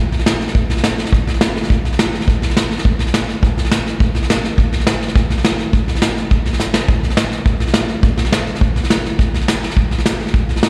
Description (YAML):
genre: rock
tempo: 208 BPM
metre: 4/4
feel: straight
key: none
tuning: none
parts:
  - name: soft brush drum kit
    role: drums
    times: 0.1-10.7 s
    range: hi-hat, kick drum, snare drum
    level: -17 LUFS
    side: equal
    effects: none
room: moderate digital room reverb, RT60 1.3 s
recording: live gig heard through the venue's PA, recital hall reverb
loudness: -16 LUFS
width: mono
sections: 0.0-10.7 A section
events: drum fill 6.6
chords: none